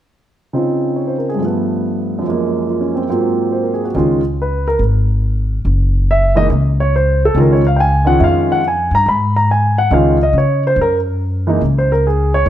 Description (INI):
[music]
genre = jazz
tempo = 141 BPM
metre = 4/4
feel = swing 66% on 8ths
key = Db major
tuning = A4 = 440 Hz
[part]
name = warm upright piano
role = melody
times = 0.5-12.5 s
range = Gb2 to Cb6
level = -14 LUFS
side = right 1 dB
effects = none
[part]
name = upright bass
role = bass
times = 3.9-12.5 s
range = Gb1 to Db3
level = -15 LUFS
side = left 1 dB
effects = none
[sound]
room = light reverb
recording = none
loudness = -13 LUFS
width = side -11 dB against mid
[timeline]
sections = 0.5-3.9 A section; 3.9-12.5 B section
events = none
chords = 0.5 Dbmaj9; 1.4 G9; 2.2 Gbmaj9; 3.1 Ab13; 3.9 Db5; 5.6 Gb7(no3); 7.3 Dbadd9; 9.1 Abm; 9.9 Dbadd9; 10.8 Gbadd9